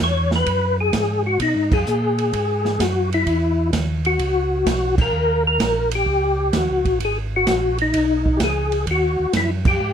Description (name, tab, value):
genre	soul jazz organ trio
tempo	128 BPM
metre	4/4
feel	swing 68% on 8ths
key	G# minor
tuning	A4 = 440 Hz
part	percussive tonewheel organ	melody	0.0-9.9 s	D#4 to C#5	-19 LUFS	left 2 dB	slow rotary speaker, chorus vibrato
part	mellow tonewheel organ	bass	0.0-9.9 s	G#1 to B2	-23 LUFS	right 1 dB	slow rotary speaker
part	open jazz drum kit	drums	0.3-9.7 s	crash cymbal, hi-hat, kick drum, ride cymbal, snare drum	-24 LUFS	right 3 dB	none
room	light reverb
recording	none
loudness	-17 LUFS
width	side -8 dB against mid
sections	0.0-9.9 A section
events	band accent 1.6, 4.9, 9.6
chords	0.0 G#m9; 3.3 E5; 5.1 D#7; 7.0 G#m9; 8.9 D#m